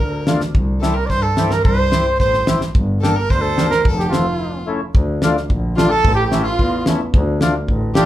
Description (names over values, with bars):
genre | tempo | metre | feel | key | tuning
klezmer | 109 BPM | 2/4 | straight | D harmonic minor from 4.9 s | A4 = 440 Hz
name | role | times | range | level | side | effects
warm trumpet | melody | 0.0-8.1 s | F4 to D5 | -19 LUFS | right 3 dB | none
clear violin | second line | 0.0-8.1 s | F4 to C5 | -25 LUFS | left 2 dB | none
rich double bass | bass | 0.0-8.0 s | F1 to G2 | -20 LUFS | equal | none
damped 70s drum kit | drums | 0.0-8.1 s | kick drum, snare drum | -17 LUFS | equal | none
mellow accordion | accompaniment | 0.3-8.1 s | A3 to G4 | -22 LUFS | left 3 dB | none
room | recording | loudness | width
wet small room reverb, RT60 0.5 s | heard from further back in the room | -14 LUFS | side -13 dB against mid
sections
0.0-4.9 A section; 4.9-8.1 B section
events
break 4.4-4.9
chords
0.0 Dm; 0.5 C; 2.7 Gm; 3.8 F; 4.4 A; 4.9 Dm; 6.0 A; 7.1 Dm